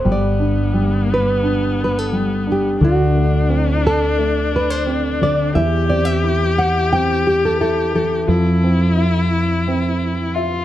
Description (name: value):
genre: acoustic folk-pop ballad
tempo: 88 BPM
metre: 4/4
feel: straight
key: G major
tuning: A4 = 441 Hz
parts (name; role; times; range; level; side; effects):
- nylon-string guitar; melody; 0.0-10.3 s; F#4 to G5; -20 LUFS; right 1 dB; none
- warm viola; second line; 0.0-10.6 s; B3 to G4; -22 LUFS; left 4 dB; none
- warm upright piano; accompaniment; 0.0-10.6 s; D3 to E5; -21 LUFS; equal; none
- mellow fretless electric bass; bass; 0.1-10.6 s; G1 to F2; -19 LUFS; right 1 dB; analog chorus
room: light reverb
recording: close, detailed microphones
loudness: -15 LUFS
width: side -13 dB against mid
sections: 0.1-10.6 A section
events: none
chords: 0.1 G; 2.8 D7; 5.6 C/E; 8.3 Fmaj7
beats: | 0.06 0.75 1.44 2.12 | 2.81 3.50 4.18 4.87 | 5.55 6.24 6.92 7.61 | 8.29 8.98 9.67 10.36